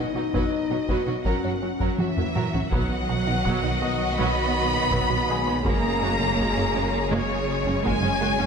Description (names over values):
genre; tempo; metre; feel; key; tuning
cinematic, hybrid orchestral and electronic film score; 82 BPM; 4/4; straight; unclear; A4 = 439 Hz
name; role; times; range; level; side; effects
warm symphonic violin section; melody; 0.0-8.5 s; C#5 to B5; -28 LUFS; left 3 dB; none
rich studio violin section; second line; 0.0-8.5 s; C#4 to D#5; -31 LUFS; left 2 dB; none
rich symphonic viola section; accompaniment; 0.0-8.5 s; F#3 to F#4; -31 LUFS; right 2 dB; none
dark French horn section; sustained chords; 0.0-8.5 s; B3 to F#4; -32 LUFS; left 4 dB; none
resonant blip pluck; arpeggios; 0.0-8.5 s; F#3 to B4; -34 LUFS; right 3 dB; chorus, ping-pong delay
rich symphonic cello section; bass; 0.0-8.5 s; F#2 to B3; -30 LUFS; right 3 dB; none
taiko ensemble; drums; 0.3-8.5 s; none; -29 LUFS; equal; none
bright trombone section; sustained chords; 2.7-8.5 s; C#3 to G#3; -33 LUFS; right 4 dB; none
dark detuned saw bass; bass; 2.7-8.5 s; F#1 to B1; -31 LUFS; equal; none
warm chamber double bass section; bass; 2.7-8.5 s; F#1 to B1; -30 LUFS; right 4 dB; none
bright baby grand piano; texture; 3.8-8.5 s; G#3 to D#5; -38 LUFS; left 1 dB; none
room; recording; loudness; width
moderate concert hall reverb, RT60 2.2 s; none; -21 LUFS; side -6 dB against mid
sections
0.0-2.7 A section; 2.7-8.5 B section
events
drum fill 2.0-2.7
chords
0.0 B; 1.3 F#; 2.7 B; 5.6 F#add9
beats
0.52 1.25 1.99 | 2.72 3.45 4.18 4.91 | 5.64 6.38 7.11 7.84